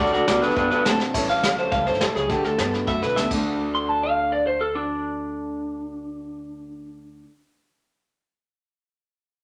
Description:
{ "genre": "rockabilly", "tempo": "208 BPM", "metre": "4/4", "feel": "straight", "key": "D major", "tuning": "A4 = 439 Hz", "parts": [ { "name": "electric guitar through a small old amp", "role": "melody", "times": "0.0-7.2 s", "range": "D4 to C6", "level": "-26 LUFS", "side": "equal", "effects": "none" }, { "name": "dark upright piano", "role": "accompaniment", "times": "0.0-7.2 s", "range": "C#5 to B5", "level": "-35 LUFS", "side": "equal", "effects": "none" }, { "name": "picked steel-string acoustic guitar", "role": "accompaniment", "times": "0.0-7.3 s", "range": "A2 to A4", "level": "-33 LUFS", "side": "equal", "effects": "none" }, { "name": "electric guitar through a small old amp", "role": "riff", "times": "0.0-7.3 s", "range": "A2 to F#4", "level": "-33 LUFS", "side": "equal", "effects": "none" }, { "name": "upright bass", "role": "bass", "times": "0.0-7.2 s", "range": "G1 to A2", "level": "-38 LUFS", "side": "equal", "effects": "none" }, { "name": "soft brush drum kit", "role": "drums", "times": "0.1-3.4 s", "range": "crash cymbal, hi-hat, kick drum, snare drum", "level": "-29 LUFS", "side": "equal", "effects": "none" } ], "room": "moderate large studio reverb, RT60 0.9 s", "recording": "none", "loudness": "-23 LUFS", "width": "mono", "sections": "0.0-1.1 A section; 1.1-3.5 B section; 3.5-5.8 C section", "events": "drum fill 1.0, 3.2", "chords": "0.0 D; 1.1 A7; 2.3 D" }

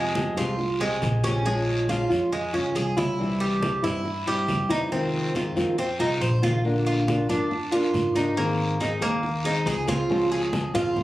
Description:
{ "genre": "latin, Cuban son and guajira", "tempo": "139 BPM", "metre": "4/4", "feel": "straight", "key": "F minor", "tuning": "A4 = 439 Hz", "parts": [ { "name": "nylon-string guitar", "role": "accompaniment", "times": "0.0-11.0 s", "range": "C3 to Ab4", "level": "-26 LUFS", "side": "left 1 dB", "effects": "none" }, { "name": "Cuban tres", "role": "arpeggios", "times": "0.0-11.0 s", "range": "G3 to C5", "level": "-27 LUFS", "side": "right 2 dB", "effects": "none" }, { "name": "upright bass", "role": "bass", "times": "0.0-11.0 s", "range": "Bb1 to Ab2", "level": "-30 LUFS", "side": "equal", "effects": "none" }, { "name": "congas", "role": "percussion", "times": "0.2-11.0 s", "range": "none", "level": "-32 LUFS", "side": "equal", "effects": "none" }, { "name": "guiro", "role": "percussion", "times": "0.2-11.0 s", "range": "none", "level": "-36 LUFS", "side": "left 2 dB", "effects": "none" } ], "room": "light reverb", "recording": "recorded on a phone in the room, club reverb, compression", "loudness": "-22 LUFS", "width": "side -16 dB against mid", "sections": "0.0-6.6 A section; 6.6-11.0 B section", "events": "none", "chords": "0.0 Fmadd9; 1.5 Bbm7; 3.2 C; 4.9 Fm7; 6.6 Bb; 8.4 Abadd9; 10.1 Dbmaj7" }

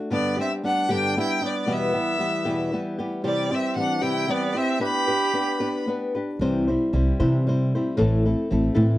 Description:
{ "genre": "mexican folk, mariachi", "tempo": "77 BPM (dotted quarters)", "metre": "6/8", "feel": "rubato", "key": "G major", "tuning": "A4 = 440 Hz", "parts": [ { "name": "flamenco guitar", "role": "accompaniment", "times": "0.0-9.0 s", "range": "E2 to C5", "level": "-24 LUFS", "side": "left 1 dB", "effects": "none" }, { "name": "clear violin", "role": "melody", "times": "0.1-5.8 s", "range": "D5 to B5", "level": "-26 LUFS", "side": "left 1 dB", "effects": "none" }, { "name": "mellow trumpet", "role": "second line", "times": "0.1-5.8 s", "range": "G3 to G4", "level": "-28 LUFS", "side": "right 5 dB", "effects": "slapback echo" }, { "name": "upright bass", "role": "bass", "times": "6.4-9.0 s", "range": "A1 to C3", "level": "-22 LUFS", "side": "right 1 dB", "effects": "none" } ], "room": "light reverb", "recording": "dry, close 1970s-style studio recording", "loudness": "-21 LUFS", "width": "side -15 dB against mid", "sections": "0.1-9.0 A section", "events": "none", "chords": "0.1 G; 1.7 Em; 3.2 C; 4.8 G/B; 6.4 C; 8.0 Am" }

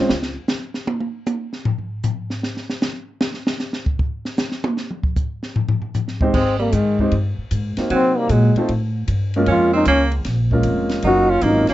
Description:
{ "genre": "jazz, small-group swing and bop", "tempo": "154 BPM", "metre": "4/4", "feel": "swing 67% on 8ths", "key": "Ab major", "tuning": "A4 = 440 Hz", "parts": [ { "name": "warm concert grand piano", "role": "accompaniment", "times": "0.0-0.1, 6.2-11.7 s", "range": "Gb3 to C5", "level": "-20 LUFS", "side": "right 1 dB", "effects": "none" }, { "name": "upright bass", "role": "bass", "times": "0.1-0.3, 6.3-11.7 s", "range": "F1 to C3", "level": "-20 LUFS", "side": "equal", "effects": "none" }, { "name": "compact cocktail drum kit", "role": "drums", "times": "0.1-11.7 s", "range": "crash cymbal, hi-hat, kick drum, ride cymbal, snare drum, toms", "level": "-22 LUFS", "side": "equal", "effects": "none" }, { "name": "bright tenor saxophone", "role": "second line", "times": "6.3-11.7 s", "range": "Eb3 to Eb4", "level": "-23 LUFS", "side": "right 4 dB", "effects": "none" }, { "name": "breathy trombone", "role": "melody", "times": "6.4-11.7 s", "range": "Ab3 to Gb4", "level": "-17 LUFS", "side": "left 1 dB", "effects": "none" } ], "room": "light reverb", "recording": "dark, warm production, nothing above 7.9 kHz", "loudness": "-17 LUFS", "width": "side -15 dB against mid", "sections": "0.0-6.3 A section; 6.3-11.7 B section", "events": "drum solo 0.1-6.3", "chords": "0.1 N.C.; 5.6 Eb; 6.3 Abmaj7; 7.9 Cm7b5; 8.7 F; 9.5 Bbm7; 11.0 Ebm9" }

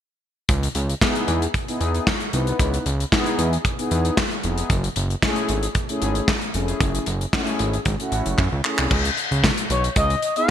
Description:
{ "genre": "early-eighties boogie funk", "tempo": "114 BPM", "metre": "4/4", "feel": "straight", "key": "C# minor", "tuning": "A4 = 440 Hz", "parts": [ { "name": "fat analog bass", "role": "bass", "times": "0.5-10.2 s", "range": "E#1 to F#2", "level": "-23 LUFS", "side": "right 1 dB", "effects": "none" }, { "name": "modern studio drum kit", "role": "drums", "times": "0.5-10.5 s", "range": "crash cymbal, handclaps, hi-hat, kick drum, snare drum", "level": "-22 LUFS", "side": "equal", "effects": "gated reverb" }, { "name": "mellow synth brass", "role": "accompaniment", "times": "1.0-10.5 s", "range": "A3 to B4", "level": "-26 LUFS", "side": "left 1 dB", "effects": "chorus" }, { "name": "expressive synth lead", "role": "melody", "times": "9.7-10.5 s", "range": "C#5 to F#5", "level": "-20 LUFS", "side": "left 2 dB", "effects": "chorus" } ], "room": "light reverb, studio reverb", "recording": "bright 1980s-style digital production", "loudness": "-19 LUFS", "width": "side -10 dB against mid", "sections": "0.5-8.9 A section; 8.9-10.5 B section", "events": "drum fill 8.4-8.9", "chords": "0.5 C#m9; 4.7 F#m9; 8.9 C#7sus2" }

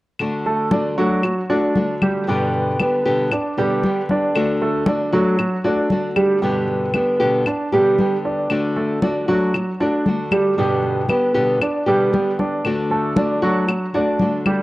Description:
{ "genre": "latin, Cuban son and guajira", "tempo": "116 BPM", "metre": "4/4", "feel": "straight", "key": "D major", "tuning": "A4 = 439 Hz", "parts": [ { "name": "nylon-string guitar", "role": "accompaniment", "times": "0.2-14.6 s", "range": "G2 to G4", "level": "-21 LUFS", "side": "left 2 dB", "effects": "none" }, { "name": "claves", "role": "percussion", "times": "0.2-14.6 s", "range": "none", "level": "-27 LUFS", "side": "left 4 dB", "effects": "none" }, { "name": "congas", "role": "percussion", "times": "0.2-14.6 s", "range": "none", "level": "-23 LUFS", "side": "left 2 dB", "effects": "none" }, { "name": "warm grand piano", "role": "arpeggios", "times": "0.5-14.6 s", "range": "F#3 to D5", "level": "-19 LUFS", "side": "right 2 dB", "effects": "none" } ], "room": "wet spring reverb, RT60 1.5 s, small room ambience", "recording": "home recording on cassette", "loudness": "-16 LUFS", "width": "side -18 dB against mid", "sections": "0.2-14.6 A section", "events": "none", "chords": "0.2 D; 2.3 G; 4.3 D; 6.4 G; 8.5 D; 10.6 G; 12.6 D" }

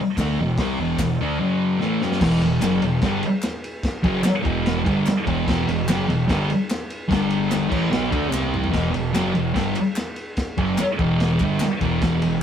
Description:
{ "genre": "garage rock duo or trio", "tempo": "147 BPM", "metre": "4/4", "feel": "straight", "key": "E minor", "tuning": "A4 = 441 Hz", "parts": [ { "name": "thick fuzz guitar", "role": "riff", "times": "0.2-12.4 s", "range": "E2 to D4", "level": "-20 LUFS", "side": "equal", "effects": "distortion" }, { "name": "growling picked electric bass", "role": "bass", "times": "0.2-12.4 s", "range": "E1 to D2", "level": "-30 LUFS", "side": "equal", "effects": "overdrive, tube saturation" }, { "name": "crunchy breakbeat drum kit", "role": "drums", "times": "0.2-12.3 s", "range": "crash cymbal, hi-hat, kick drum, ride cymbal, snare drum, toms", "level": "-26 LUFS", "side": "equal", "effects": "none" }, { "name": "group handclap", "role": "percussion", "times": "0.2-11.7 s", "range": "none", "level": "-35 LUFS", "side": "left 2 dB", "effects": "none" } ], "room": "light reverb", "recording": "band playing live in one room", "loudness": "-19 LUFS", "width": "side -8 dB against mid", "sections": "0.0-2.2 A section; 2.2-8.7 B section; 8.7-12.4 C section", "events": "drum fill 1.8-2.2, 8.3-8.7", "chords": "0.0 Em; 1.4 F#5; 1.8 F#m7; 2.2 Em; 7.1 G5; 7.7 E5; 8.3 C5; 8.7 Em" }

